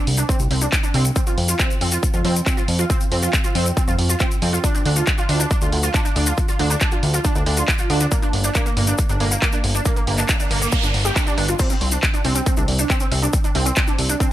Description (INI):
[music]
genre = uplifting trance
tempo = 138 BPM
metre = 4/4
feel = straight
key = unclear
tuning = A4 = 440 Hz
[part]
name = fat analog bass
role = bass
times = 0.1-14.2 s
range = G1 to F2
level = -20 LUFS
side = equal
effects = sidechain pumping
[part]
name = punchy analog drum machine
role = drums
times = 0.1-14.3 s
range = crash cymbal, handclaps, hi-hat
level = -25 LUFS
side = equal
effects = none
[part]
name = wide unison pluck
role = arpeggios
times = 0.2-14.2 s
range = Bb3 to G4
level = -24 LUFS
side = right 2 dB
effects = ensemble chorus, sidechain pumping, dub echo
[part]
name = maracas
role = percussion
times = 0.2-14.3 s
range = none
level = -27 LUFS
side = left 4 dB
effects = none
[part]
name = electronic kick drum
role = drums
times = 0.3-14.3 s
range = none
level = -20 LUFS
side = equal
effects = overdrive
[part]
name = noise sweep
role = sound effects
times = 10.3-11.6 s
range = none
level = -28 LUFS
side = right 4 dB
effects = none
[sound]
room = little or no reverb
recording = none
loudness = -17 LUFS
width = side -13 dB against mid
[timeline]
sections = 0.0-14.3 A section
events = noise sweep 10.3-11.6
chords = 0.0 Csus2; 1.2 F5; 4.6 Dm; 8.1 Gm; 11.6 Csus2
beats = 0.29 0.72 | 1.16 1.59 2.03 2.46 | 2.90 3.33 3.77 4.20 | 4.64 5.07 5.51 5.94 | 6.38 6.81 7.25 7.68 | 8.12 8.55 8.99 9.42 | 9.86 10.29 10.72 11.16 | 11.60 12.03 12.46 12.90 | 13.33 13.77 14.20